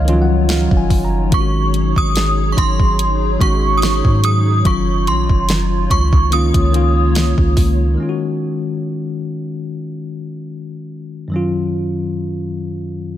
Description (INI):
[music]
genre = contemporary R&B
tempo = 72 BPM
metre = 4/4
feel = swing 54% on 16ths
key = unclear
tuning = A4 = 440 Hz
[part]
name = bell-like tine electric piano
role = accompaniment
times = 0.0-13.2 s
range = Gb2 to Bb5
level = -20 LUFS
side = left 3 dB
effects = slow stereo tremolo
[part]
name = hollow soft pad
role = sustained chords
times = 0.0-8.0 s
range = Gb3 to Db5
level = -25 LUFS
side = right 1 dB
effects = ensemble chorus
[part]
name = long sustained 808-style bass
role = bass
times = 0.0-8.0 s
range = Gb1 to Ab2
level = -17 LUFS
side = right 1 dB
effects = none
[part]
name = smooth R&B drum kit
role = drums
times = 0.1-7.8 s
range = hi-hat, kick drum, snare drum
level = -16 LUFS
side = equal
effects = none
[part]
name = synth chime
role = melody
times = 1.3-7.5 s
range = C6 to Eb6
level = -20 LUFS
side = right 1 dB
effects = ensemble chorus, phaser, ping-pong delay
[sound]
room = little or no reverb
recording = none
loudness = -14 LUFS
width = side -12 dB against mid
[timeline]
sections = 0.0-8.0 A section; 8.0-13.2 B section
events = tine electric piano fill 0.0-1.3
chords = 0.0 Ebm9; 1.3 Ab7sus4; 4.7 Ebm9/Gb; 6.3 Db69; 8.0 Ab7sus4; 11.3 Ebm9/Gb